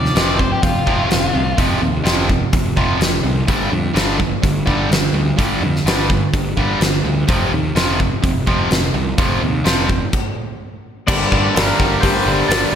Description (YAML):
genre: classic rock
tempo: 126 BPM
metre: 4/4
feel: straight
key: G minor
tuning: A4 = 439 Hz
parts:
  - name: octave-fuzz lead guitar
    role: second line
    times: 0.0-1.6 s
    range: F4 to D5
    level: -22 LUFS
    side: left 2 dB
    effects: distortion, slapback echo
  - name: sludgy distorted guitar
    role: riff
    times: 0.0-12.7 s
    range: F2 to G3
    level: -18 LUFS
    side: right 1 dB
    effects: overdrive
  - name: fuzz picked electric bass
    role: bass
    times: 0.0-12.8 s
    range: F1 to F2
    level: -22 LUFS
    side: equal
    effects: overdrive
  - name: huge arena drum kit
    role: drums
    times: 0.1-12.6 s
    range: crash cymbal, hi-hat, kick drum, snare drum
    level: -18 LUFS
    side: equal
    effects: none
  - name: clean lap steel guitar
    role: melody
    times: 11.1-12.8 s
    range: Bb4 to D5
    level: -21 LUFS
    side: left 1 dB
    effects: none
  - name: picked steel-string acoustic guitar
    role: accompaniment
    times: 11.1-12.8 s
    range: G2 to G4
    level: -25 LUFS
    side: left 7 dB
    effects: none
  - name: overdriven tonewheel organ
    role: sustained chords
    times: 11.1-12.8 s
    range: Bb3 to Bb4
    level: -28 LUFS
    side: equal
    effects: none
room: moderate lush hall reverb, RT60 1.9 s, studio ambience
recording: big arena sound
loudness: -14 LUFS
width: side -8 dB against mid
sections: 0.0-11.1 A section; 11.1-12.8 B section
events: stop 10.1-11.1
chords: 0.0 F5; 3.5 G5; 7.3 F5; 11.1 Gm